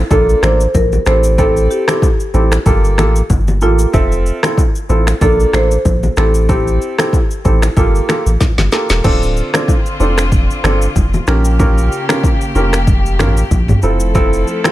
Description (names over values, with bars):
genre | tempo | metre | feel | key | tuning
afrobeats | 94 BPM | 4/4 | swing 55% on 16ths | unclear | A4 = 438 Hz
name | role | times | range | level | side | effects
marimba with medium mallets | melody | 0.0-8.7 s | F4 to C5 | -18 LUFS | equal | none
punchy sub bass | bass | 0.0-14.4 s | D1 to Bb1 | -14 LUFS | equal | none
warm baby grand piano | accompaniment | 0.1-14.7 s | Bb3 to E5 | -18 LUFS | right 2 dB | none
afro-pop drum kit | drums | 0.1-14.7 s | crash cymbal, finger snaps, kick drum, rim click, shaker, snare drum, toms | -15 LUFS | equal | none
congas and bongos | percussion | 0.1-14.7 s | none | -22 LUFS | left 2 dB | none
warm chamber string section | sustained chords | 9.0-14.7 s | Db3 to A4 | -22 LUFS | left 2 dB | none
room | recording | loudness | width
small room reverb | none | -11 LUFS | side -15 dB against mid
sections
0.0-9.0 A section; 9.0-14.7 B section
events
drum fill 8.4-9.0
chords
0.1 Bbmaj7; 1.1 Am7; 2.7 Gm9; 3.9 Fmaj7; 5.2 Bbmaj7; 6.2 Am7; 7.8 Gm9; 9.0 Dm7; 11.3 Bbm6; 13.8 Fmaj7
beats
0.11 0.74 | 1.38 2.02 2.66 3.30 | 3.94 4.58 5.21 5.85 | 6.49 7.13 7.77 8.40 | 9.04 9.68 10.32 10.96 | 11.60 12.23 12.87 13.51 | 14.15